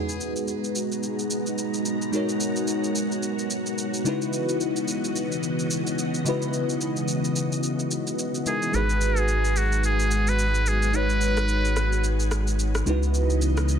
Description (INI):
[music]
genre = amapiano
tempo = 109 BPM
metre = 4/4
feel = swing 58% on 16ths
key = G# minor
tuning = A4 = 440 Hz
[part]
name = trumpet with metal mute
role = melody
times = 0.0-3.2, 8.5-12.0 s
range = D#4 to B4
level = -28 LUFS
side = right 1 dB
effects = low-pass filter, ping-pong delay
[part]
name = bell-like FM electric piano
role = accompaniment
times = 0.0-13.8 s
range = C#3 to C#5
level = -28 LUFS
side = left 1 dB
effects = chorus, phaser
[part]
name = string machine, full ensemble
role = sustained chords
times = 0.0-13.8 s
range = C#3 to A#5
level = -29 LUFS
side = equal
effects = ensemble chorus
[part]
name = electronic shaker and rim click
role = drums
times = 0.1-13.8 s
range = none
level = -32 LUFS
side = right 1 dB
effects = overdrive
[part]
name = warm sub bass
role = bass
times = 8.7-13.8 s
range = G#1 to C#2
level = -23 LUFS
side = equal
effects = none
[sound]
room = light reverb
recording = dense, heavily limited modern master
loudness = -22 LUFS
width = side -8 dB against mid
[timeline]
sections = 0.0-13.8 A section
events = filter sweep 0.0-13.8; kick muted 7.6-8.7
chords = 0.0 G#m9; 4.1 C#m11; 8.7 G#m9; 12.9 C#m11